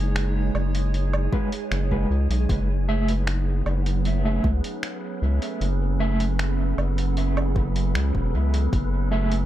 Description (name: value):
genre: ambient dub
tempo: 77 BPM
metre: 4/4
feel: straight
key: F# dorian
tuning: A4 = 437 Hz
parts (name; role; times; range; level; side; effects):
- warbly tape-like pad; sustained chords; 0.0-9.5 s; F#3 to C#5; -31 LUFS; right 4 dB; chorus, built-in reverb, phaser
- round analog bass; bass; 0.0-9.5 s; E1 to C#2; -22 LUFS; equal; none
- wind-like tuned noise texture; texture; 0.0-9.5 s; G#3 to G#5; -35 LUFS; equal; built-in reverb
- lo-fi sampler-style drum kit; drums; 0.2-9.5 s; finger snaps, hi-hat, woodblock; -33 LUFS; right 1 dB; small room reverb, dub echo
- mellow electric guitar; stabs; 1.3-9.4 s; G#3 to E5; -30 LUFS; right 1 dB; tremolo, dub echo
- electronic kick drum; drums; 1.3-8.9 s; none; -26 LUFS; equal; overdrive, small room reverb
room: little or no reverb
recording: echo-heavy mix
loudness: -21 LUFS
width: side -13 dB against mid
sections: 0.0-9.5 A section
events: none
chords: 0.0 G#m7/F#; 2.5 F#m9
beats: 0.16 0.94 1.72 | 2.50 3.27 4.05 4.83 | 5.61 6.39 7.17 7.95 | 8.73